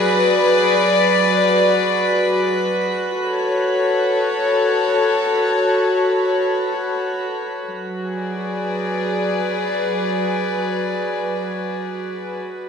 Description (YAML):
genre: ambient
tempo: free time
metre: none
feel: none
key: unclear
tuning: A4 = 440 Hz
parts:
  - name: rich chamber string section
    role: sustained chords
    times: 0.0-12.7 s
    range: F#3 to D5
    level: -17 LUFS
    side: left 1 dB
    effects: none
  - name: drifting glass-harmonics texture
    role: texture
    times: 0.0-7.7 s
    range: B4 to B5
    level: -27 LUFS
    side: right 2 dB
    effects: chorus, built-in reverb
room: wet lush hall reverb, RT60 2.7 s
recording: dark, warm production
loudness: -17 LUFS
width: side -6 dB against mid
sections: 0.0-7.7 A section; 7.7-12.7 B section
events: none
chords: 0.0 Bm6/F#; 2.9 F#m; 7.7 Bm6/F#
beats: free time